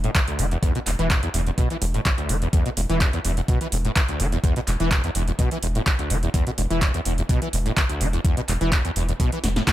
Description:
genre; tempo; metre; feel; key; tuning
acid house; 126 BPM; 4/4; straight; unclear; A4 = 440 Hz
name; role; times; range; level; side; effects
acid bass, saw; riff; 0.0-9.7 s; E1 to E3; -25 LUFS; equal; ensemble chorus, tape echo
saturated sub bass; bass; 0.0-9.6 s; E1; -24 LUFS; equal; sidechain pumping
electro analog drum machine; drums; 0.0-9.7 s; handclaps, hi-hat, snare drum; -27 LUFS; right 1 dB; overdrive
electronic kick drum; drums; 0.1-9.7 s; none; -21 LUFS; equal; none
room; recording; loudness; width
little or no reverb; none; -20 LUFS; side -14 dB against mid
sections
0.0-9.7 A section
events
drum fill 9.4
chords
none

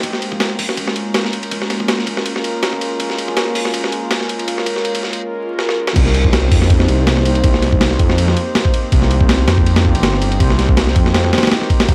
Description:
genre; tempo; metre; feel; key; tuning
drum and bass, jungle; 162 BPM; 4/4; swing 54% on 16ths; C phrygian; A4 = 439 Hz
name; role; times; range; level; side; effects
warbly tape-like pad; sustained chords; 0.0-11.9 s; Ab3 to C5; -23 LUFS; equal; chorus, built-in reverb, phaser
breakbeat sampler-style drum kit; drums; 0.0-11.9 s; crash cymbal, hi-hat, kick drum, ride cymbal, snare drum; -18 LUFS; equal; high-pass filter on snare, high-pass filter on cymbals, high-pass filter on kick, high-pass filter on hats, high-pass filter on room
detuned saw bass; bass; 6.0-11.9 s; G1 to F2; -18 LUFS; equal; none
room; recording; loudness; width
light reverb; dry, gritty hardware recording, vinyl crackle, high-pass filter; -16 LUFS; mono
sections
0.0-6.0 A section; 6.0-11.9 B section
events
build-up 0.0-6.0; drum fill 5.6-6.0; drop 6.0-11.9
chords
0.0 Bbm7; 6.0 Cm7

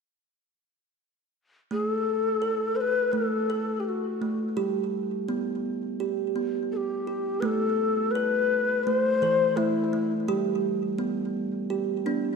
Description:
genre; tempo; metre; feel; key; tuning
world meditative; 84 BPM; 4/4; straight; A dorian; A4 = 438 Hz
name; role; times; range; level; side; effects
breathy mellow low Native American-style wooden flute; melody; 1.7-10.1 s; E4 to C5; -25 LUFS; left 4 dB; tape echo
kalimba; arpeggios; 1.7-12.4 s; E3 to A4; -28 LUFS; right 3 dB; tape echo
room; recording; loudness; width
wet scoring stage reverb, RT60 1.9 s; none; -24 LUFS; side -5 dB against mid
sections
1.7-7.4 A section; 7.4-12.4 B section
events
none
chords
1.7 N.C.; 4.6 G; 7.4 Am; 10.3 G

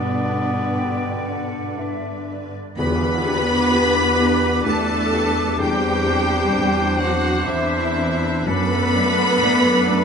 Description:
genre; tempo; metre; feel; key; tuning
cinematic, emotional film score for orchestra; 58-68 BPM; 3/4; rubato; E minor; A4 = 441 Hz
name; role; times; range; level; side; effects
rich symphonic violin section; melody; 0.0-10.0 s; B4 to B5; -24 LUFS; left 2 dB; none
bright oboe; second line; 0.0-10.0 s; A4 to D5; -29 LUFS; right 2 dB; none
mellow clarinet; second line; 0.0-10.0 s; B3 to G4; -30 LUFS; equal; none
warm chamber violin section; second line; 0.0-10.0 s; E4 to B4; -28 LUFS; left 5 dB; none
felt-muted upright piano; accompaniment; 0.0-10.0 s; E2 to D5; -28 LUFS; left 3 dB; none
warm symphonic viola section; accompaniment; 0.0-10.0 s; D3 to B4; -26 LUFS; right 2 dB; none
mellow French horn section; sustained chords; 0.0-10.0 s; A3 to D4; -29 LUFS; left 7 dB; none
warm symphonic cello section; bass; 0.0-10.0 s; B2 to B3; -24 LUFS; right 2 dB; none
warm symphonic double bass section; bass; 0.0-10.0 s; E2 to G2; -26 LUFS; right 3 dB; none
hollow flute section; second line; 0.8-10.0 s; D5 to D6; -30 LUFS; left 1 dB; none
tam-tam; percussion; 2.8-6.5 s; none; -32 LUFS; left 1 dB; none
room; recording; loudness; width
moderate scoring stage reverb, RT60 1.4 s; nothing above 10.6 kHz; -17 LUFS; side -6 dB against mid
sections
0.0-2.8 A section; 2.8-10.0 B section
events
band accent 2.8-3.7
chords
0.0 G; 2.8 Em7; 5.6 Cadd9/E; 8.5 D6/F#

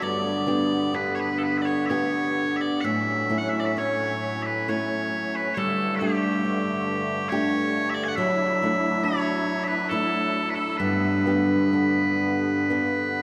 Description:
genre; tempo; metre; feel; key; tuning
celtic folk, Celtic slow air; 60-70 BPM; 3/4; rubato; unclear; A4 = 440 Hz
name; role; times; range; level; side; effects
loud bright bagpipes; melody; 0.0-13.2 s; G4 to G#5; -29 LUFS; equal; none
flamenco guitar; accompaniment; 0.0-13.2 s; G2 to G4; -27 LUFS; equal; none
musette accordion; sustained chords; 0.0-13.2 s; G2 to E4; -33 LUFS; equal; none
room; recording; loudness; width
wet cathedral reverb, RT60 4.9 s; recorded in a church or concert hall; -24 LUFS; mono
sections
0.0-13.2 A section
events
none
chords
0.0 G; 2.8 A6; 5.6 Gsus2; 8.2 Dadd9/F#; 10.8 G

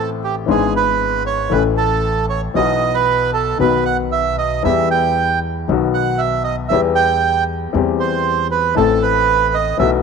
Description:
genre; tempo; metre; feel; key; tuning
tango; 117 BPM; 4/4; rubato; E harmonic minor; A4 = 440 Hz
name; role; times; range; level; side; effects
bandoneon; melody; 0.0-9.9 s; G4 to G5; -17 LUFS; right 9 dB; none
warm upright piano; accompaniment; 0.0-10.0 s; G#1 to A4; -19 LUFS; left 11 dB; none
upright bass; bass; 0.0-10.0 s; G#1 to E2; -24 LUFS; equal; none
room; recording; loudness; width
moderate echo chamber reverb, RT60 1.8 s, small room ambience; 1960s-style stereo with parts hard left and right; -14 LUFS; side -5 dB against mid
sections
0.0-10.0 A section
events
none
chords
0.5 E7/G#; 1.5 A; 2.6 Bsus4; 3.6 B; 4.6 Em; 5.7 B; 6.7 Em; 7.7 C/E; 8.8 Am

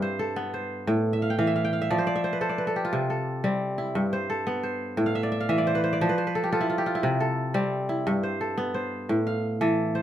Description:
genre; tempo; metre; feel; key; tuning
west african traditional; 117 BPM (dotted quarters); 12/8; straight; C major; A4 = 440 Hz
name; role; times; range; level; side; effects
kora; solo; 0.0-10.0 s; G2 to G5; -24 LUFS; equal; none
room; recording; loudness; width
moderate studio reverb, RT60 0.6 s; minimal, uncompressed stereo recording; -24 LUFS; side -11 dB against mid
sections
0.0-10.0 A section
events
kora fill 1.1-2.9, 5.1-7.0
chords
0.0 G; 0.9 Am; 1.9 F; 2.9 C; 4.0 G; 5.0 Am; 6.0 F; 7.0 C; 8.1 G; 9.1 Am

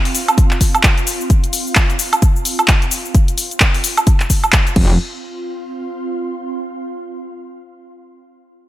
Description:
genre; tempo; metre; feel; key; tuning
bass house; 130 BPM; 4/4; swing 59% on 16ths; unclear; A4 = 440 Hz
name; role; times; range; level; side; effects
ethereal airy pad; texture; 0.0-6.8 s; C4 to C6; -27 LUFS; right 2 dB; ensemble chorus, built-in reverb, sidechain pumping
house drum kit; drums; 0.1-4.9 s; crash cymbal, handclaps, hi-hat, shaker, woodblock; -16 LUFS; equal; none
electronic kick drum; drums; 0.4-4.9 s; none; -13 LUFS; equal; none
metallic wobble bass; bass; 4.8-5.0 s; F1; -14 LUFS; equal; distortion, chorus, tube saturation, sidechain pumping
room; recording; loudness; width
light reverb, digital ambience; none; -13 LUFS; side -15 dB against mid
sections
0.0-5.0 A section; 5.0-6.8 B section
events
fade-out on ambient pad 0.0-5.0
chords
0.0 F5

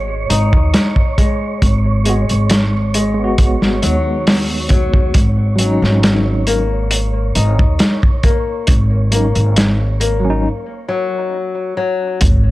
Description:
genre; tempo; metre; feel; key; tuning
trip hop; 68 BPM; 4/4; straight; unclear; A4 = 440 Hz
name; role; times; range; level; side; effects
flamenco guitar; arpeggios; 0.0-12.2 s; F#3 to D#4; -21 LUFS; left 4 dB; analog delay
upright bass; bass; 0.0-12.5 s; G#1 to D#2; -16 LUFS; equal; tube saturation
wind-like tuned noise texture; texture; 0.0-10.4 s; C#5; -28 LUFS; right 6 dB; built-in reverb
crunchy breakbeat drum kit; drums; 0.3-12.4 s; hi-hat, kick drum, snare drum; -14 LUFS; equal; none
tine electric piano; accompaniment; 2.0-10.5 s; F#3 to F#4; -21 LUFS; right 1 dB; medium stereo tremolo, tape echo
sub drop; sound effects; 12.3-12.5 s; none; -16 LUFS; equal; none
room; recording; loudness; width
little or no reverb; dry, gritty hardware recording, cassette tape; -12 LUFS; side -17 dB against mid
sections
0.0-12.2 A section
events
break 10.4-12.2; impact 12.2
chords
0.0 G#m7; 5.2 D#m7/G#

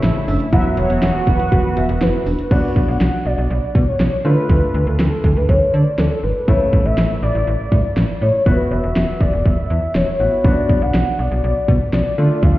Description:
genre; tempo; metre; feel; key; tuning
synth-pop; 121 BPM; 4/4; straight; unclear; A4 = 437 Hz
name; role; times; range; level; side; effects
warm velvety synth lead; melody; 0.0-12.6 s; A4 to F#5; -21 LUFS; left 1 dB; chorus, ping-pong delay
clear baby grand piano; accompaniment; 0.0-12.6 s; C#3 to F#4; -25 LUFS; left 1 dB; none
phased analog pad; sustained chords; 0.0-2.5 s; C#3 to F#4; -25 LUFS; equal; phaser, chorus
soft round pluck; arpeggios; 0.0-2.4 s; D4 to F#4; -26 LUFS; right 2 dB; chorus, ping-pong delay
slap-like FM bass; bass; 0.0-12.5 s; E1 to D3; -18 LUFS; equal; none
pop drum kit; drums; 0.0-12.5 s; crash cymbal, hi-hat, kick drum, snare drum; -17 LUFS; equal; none
mellow synth brass; second line; 0.3-1.9 s; B4 to E5; -26 LUFS; equal; chorus, ping-pong delay
room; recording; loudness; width
moderate lush hall reverb, RT60 2.2 s; heard muffled through a wall, stone room reverb, EQ, nothing above 10.8 kHz; -14 LUFS; side -16 dB against mid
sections
0.0-2.5 A section; 2.5-12.6 B section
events
none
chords
0.0 A; 0.5 Esus2; 2.5 Bm; 4.2 Dm; 6.5 A; 8.5 Esus2; 10.4 Bm

